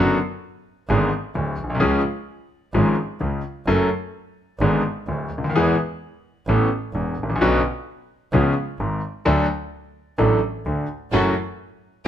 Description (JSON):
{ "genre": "tango", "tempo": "129 BPM", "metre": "4/4", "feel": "rubato", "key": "F# minor", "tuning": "A4 = 440 Hz", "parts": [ { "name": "bright concert grand piano", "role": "accompaniment", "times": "0.0-12.1 s", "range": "D1 to A4", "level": "-20 LUFS", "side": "left 1 dB", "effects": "none" }, { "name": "clear double bass", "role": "bass", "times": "0.0-12.1 s", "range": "E1 to E2", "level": "-24 LUFS", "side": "right 2 dB", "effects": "none" }, { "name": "dark studio string section", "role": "stabs", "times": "11.1-12.1 s", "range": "E4 to A4", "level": "-26 LUFS", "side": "right 4 dB", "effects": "none" } ], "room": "light reverb", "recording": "close, detailed microphones", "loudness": "-19 LUFS", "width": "side -10 dB against mid", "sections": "0.0-12.1 A section", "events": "none", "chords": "0.0 Bm/F#; 0.9 G#dim; 1.8 C#; 3.7 F#m; 4.6 G#dim; 5.5 E; 6.5 Aadd9; 7.4 Bmadd9; 8.3 C#7; 9.3 D; 11.1 F#m7", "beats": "0.42 0.89 1.35 | 1.81 2.28 2.74 3.21 | 3.68 4.14 4.61 5.07 | 5.54 6.00 6.47 6.93 | 7.39 7.86 8.32 8.79 | 9.25 9.72 10.18 10.65 | 11.12 11.59 12.06" }